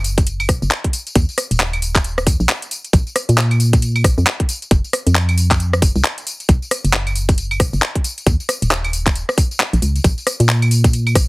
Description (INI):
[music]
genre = UK garage, two-step garage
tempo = 135 BPM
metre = 4/4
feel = swing 60% on 16ths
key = Bb minor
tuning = A4 = 440 Hz
[part]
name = organ-like FM bass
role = bass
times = 0.0-11.3 s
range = Eb1 to Bb2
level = -17 LUFS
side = equal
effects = none
[part]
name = garage drum kit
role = drums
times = 0.0-11.3 s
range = claves, handclaps, hi-hat, rim click, tambourine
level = -19 LUFS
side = equal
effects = none
[part]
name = electronic kick drum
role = drums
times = 0.2-11.3 s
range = none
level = -15 LUFS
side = equal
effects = none
[sound]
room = little or no reverb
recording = heavily compressed radio sound, multiband compression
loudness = -14 LUFS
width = side -24 dB against mid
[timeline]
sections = 0.0-11.3 A section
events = none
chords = none